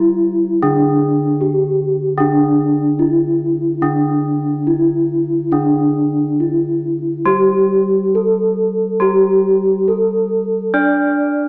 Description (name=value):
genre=gamelan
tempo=69-80 BPM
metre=4/4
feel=straight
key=unclear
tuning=A4 = 440 Hz
part: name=gamelan-type bronze metallophone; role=melody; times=0.0-11.5 s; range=D4 to D5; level=-14 LUFS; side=equal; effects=none
part: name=gamelan-type bronze metallophone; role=accompaniment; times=0.0-11.5 s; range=D3 to D4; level=-19 LUFS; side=equal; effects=none
room=moderate recital hall reverb, RT60 1.9 s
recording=worn, warbling old tape, cassette tape, warbly pitch drift, small speaker sound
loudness=-13 LUFS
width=side -30 dB against mid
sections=0.0-5.5 A section; 5.5-11.5 B section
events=none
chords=none